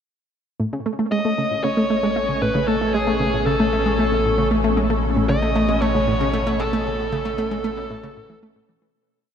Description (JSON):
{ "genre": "ambient, sequencer-driven space music", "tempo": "115 BPM", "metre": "4/4", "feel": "straight", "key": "A lydian", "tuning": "A4 = 440 Hz", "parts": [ { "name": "phased string machine", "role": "sustained chords", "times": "0.6-8.9 s", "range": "B2 to C#4", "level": "-31 LUFS", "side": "equal", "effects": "ensemble chorus, phaser, shimmer reverb" }, { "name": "warbly dusty pluck", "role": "arpeggios", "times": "0.6-8.9 s", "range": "A3", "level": "-27 LUFS", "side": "right 2 dB", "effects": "chorus, auto-pan, cassette tape, shimmer reverb, tape echo" }, { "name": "analog pluck", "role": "riff", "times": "0.6-8.9 s", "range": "A2 to A3", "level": "-23 LUFS", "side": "equal", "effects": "chorus, shimmer reverb, tape echo" }, { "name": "round analog bass", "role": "bass", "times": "0.6-8.9 s", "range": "A1", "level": "-27 LUFS", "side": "equal", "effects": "none" }, { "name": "bubbling stepped-filter texture", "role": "texture", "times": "0.9-9.0 s", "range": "C#4 to C#5", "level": "-30 LUFS", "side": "left 2 dB", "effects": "chorus, built-in reverb, shimmer reverb" }, { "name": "bluesy overdriven lead guitar", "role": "melody", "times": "1.1-8.4 s", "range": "G#4 to D#5", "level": "-23 LUFS", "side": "equal", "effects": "distortion, shimmer reverb, tape echo" } ], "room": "wet huge ambient reverb, RT60 7.8 s", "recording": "none", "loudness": "-18 LUFS", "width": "side -8 dB against mid", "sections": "0.6-8.9 A section", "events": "fade-in on string machine 0.6-8.9; fade-out 6.2-8.9", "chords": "0.6 Aadd9", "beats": "| 0.60 1.12 1.64 2.16 | 2.69 3.21 3.73 4.25 | 4.77 5.29 5.82 6.34 | 6.86 7.38 7.90 8.43" }